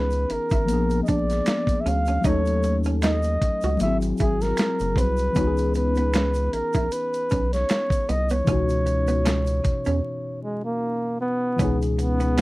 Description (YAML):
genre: R&B, neo-soul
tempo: 77 BPM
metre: 4/4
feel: swing 56% on 16ths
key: C# dorian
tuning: A4 = 440 Hz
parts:
  - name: breathy flugelhorn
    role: melody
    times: 0.0-12.4 s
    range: G#3 to E#5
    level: -25 LUFS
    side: equal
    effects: none
  - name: vintage hollow-body jazz guitar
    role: second line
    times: 0.0-12.4 s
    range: B3 to F#4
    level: -30 LUFS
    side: right 4 dB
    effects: none
  - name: tine electric piano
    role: accompaniment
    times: 0.0-12.4 s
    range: B2 to A4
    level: -27 LUFS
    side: left 3 dB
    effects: phaser
  - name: rubbery square bass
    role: bass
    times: 0.0-12.4 s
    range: F#1 to E2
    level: -24 LUFS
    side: equal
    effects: none
  - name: dusty soul sampler-style drum kit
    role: drums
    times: 0.1-12.4 s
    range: hi-hat, kick drum, snare drum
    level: -25 LUFS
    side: equal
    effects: none
  - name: tube shaker and finger snaps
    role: percussion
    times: 0.1-12.4 s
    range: none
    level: -40 LUFS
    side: right 5 dB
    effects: none
room: little or no reverb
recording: dry, close 1970s-style studio recording, vinyl crackle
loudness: -20 LUFS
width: side -19 dB against mid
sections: 0.0-11.6 A section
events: break 10.0-11.6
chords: 0.0 C#m9; 0.7 A#7b9; 2.2 D#m7b5; 3.8 G#7b13; 5.4 C#m9